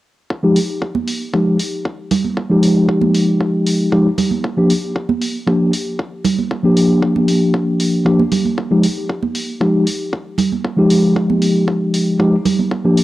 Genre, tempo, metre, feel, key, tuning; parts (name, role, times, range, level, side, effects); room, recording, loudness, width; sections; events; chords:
nu-disco, nu disco; 116 BPM; 4/4; straight; F dorian; A4 = 440 Hz
electronic kick drum; drums; 0.3-12.8 s; -23 LUFS; left 1 dB; high-pass filter on kick, high-pass filter on room
mellow tine electric piano; accompaniment; 0.4-13.0 s; F3 to G4; -14 LUFS; equal; medium stereo tremolo, low-pass filter, cassette tape
electronic hi-hat; drums; 0.6-13.0 s; -26 LUFS; left 1 dB
congas; percussion; 0.9-12.7 s; -20 LUFS; right 5 dB
moderate spring reverb, RT60 2.3 s; home recording on cassette; -14 LUFS; side -16 dB against mid
0.3-13.0 A section
0.3 Fm9; 4.4 Gm7; 8.6 Fm9